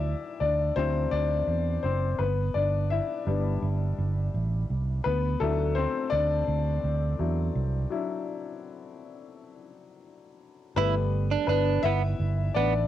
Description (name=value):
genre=piano-driven pop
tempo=84 BPM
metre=4/4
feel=straight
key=G major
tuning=A4 = 441 Hz
part: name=clear upright piano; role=accompaniment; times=0.0-12.9 s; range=F#3 to E5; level=-29 LUFS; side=left 6 dB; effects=cassette tape
part: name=fingered electric bass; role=bass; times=0.0-12.8 s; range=F#1 to E2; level=-27 LUFS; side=right 2 dB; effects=none
part: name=direct-recorded clean electric guitar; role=riff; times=10.8-12.7 s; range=B3 to E4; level=-27 LUFS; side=right 10 dB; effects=cassette tape
room=light reverb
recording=home recording on cassette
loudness=-25 LUFS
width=side -12 dB against mid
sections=0.0-10.8 A section; 10.8-12.9 B section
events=upright piano solo 0.0-10.8, 10.8-12.9; break 7.9-10.8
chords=0.0 Dadd9; 2.2 G; 5.1 Dadd9; 10.8 Gadd9